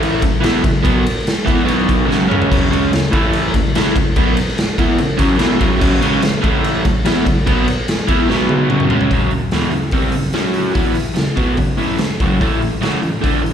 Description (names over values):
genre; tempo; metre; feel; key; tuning
garage rock duo or trio; 146 BPM; 4/4; straight; F# minor; A4 = 440 Hz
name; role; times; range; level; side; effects
crunchy overdriven guitar; riff; 0.0-13.5 s; E2 to F#4; -16 LUFS; equal; slapback echo
raw garage drum kit; drums; 0.0-13.5 s; crash cymbal, hi-hat, kick drum, ride cymbal, snare drum, toms; -17 LUFS; equal; none
room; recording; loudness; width
moderate club reverb, RT60 0.9 s; live gig heard through the venue's PA, recital hall reverb; -13 LUFS; side -8 dB against mid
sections
0.0-9.1 A section; 9.1-13.5 B section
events
drum fill 2.1-2.5, 8.3-9.1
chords
0.2 F#5; 1.7 B5; 2.1 F#5; 3.1 A5; 3.5 F#5; 6.4 A5; 6.8 F#5; 8.3 B5; 8.7 F#5; 9.1 F#m; 12.4 A5